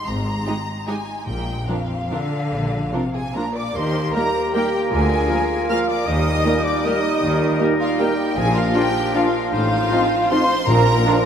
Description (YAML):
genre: classical, orchestral ballroom waltz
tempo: 135-171 BPM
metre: 3/4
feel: rubato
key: Eb major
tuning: A4 = 439 Hz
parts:
  - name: rich studio violin section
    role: melody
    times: 0.0-11.3 s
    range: F5 to F6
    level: -28 LUFS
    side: left 1 dB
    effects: none
  - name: clear studio double bass section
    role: bass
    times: 0.1-11.0 s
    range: Ab1 to Eb2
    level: -25 LUFS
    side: equal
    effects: none
  - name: rich studio cello section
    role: bass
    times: 0.1-11.0 s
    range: F2 to Eb3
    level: -27 LUFS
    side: left 1 dB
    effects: none
  - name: rich studio violin section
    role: second line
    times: 0.5-11.2 s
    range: F4 to F5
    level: -26 LUFS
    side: equal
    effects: none
  - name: rich studio viola section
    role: accompaniment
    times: 0.5-11.1 s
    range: F3 to G4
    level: -30 LUFS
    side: right 2 dB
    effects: none
  - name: timpani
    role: percussion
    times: 1.3-1.9, 8.4-11.2 s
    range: Bb2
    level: -28 LUFS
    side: left 1 dB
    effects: none
  - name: silver concert flute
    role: second line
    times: 3.1-11.2 s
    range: F5 to F6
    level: -27 LUFS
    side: right 4 dB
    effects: none
  - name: clear oboe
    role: second line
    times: 3.8-11.3 s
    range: Bb4 to C5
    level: -30 LUFS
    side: left 4 dB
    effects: none
  - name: warm clarinet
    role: second line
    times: 3.8-11.3 s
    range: D4 to G4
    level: -25 LUFS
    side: left 1 dB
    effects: none
  - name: warm bassoon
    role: accompaniment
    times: 3.8-11.3 s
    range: F3 to Bb3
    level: -27 LUFS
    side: right 4 dB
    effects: none
  - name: warm French horn section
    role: sustained chords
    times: 4.1-11.2 s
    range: Bb3 to F4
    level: -28 LUFS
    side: right 1 dB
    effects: none
  - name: warm trombone section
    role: sustained chords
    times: 4.1-11.2 s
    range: F2 to G3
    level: -30 LUFS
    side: equal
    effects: none
  - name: warm trumpet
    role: stabs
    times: 4.1-11.2 s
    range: F4 to Bb4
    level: -28 LUFS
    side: left 4 dB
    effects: none
room: wet cathedral reverb, RT60 6.1 s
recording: in a vast, echoing space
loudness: -17 LUFS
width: side -8 dB against mid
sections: 0.0-3.8 A section; 3.8-11.3 B section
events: none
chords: 0.0 Ab5; 1.3 Bb; 3.8 Eb; 4.9 Bb7/D; 6.1 Eb; 8.4 Bb; 9.5 F7/A; 10.7 Bb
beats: | 0.07 0.46 0.87 | 1.27 1.68 2.12 | 2.52 2.92 3.35 | 3.75 4.14 4.54 | 4.92 5.29 5.70 | 6.07 6.45 6.85 | 7.22 7.60 8.00 | 8.37 8.75 9.15 | 9.53 9.91 10.31 | 10.69 11.06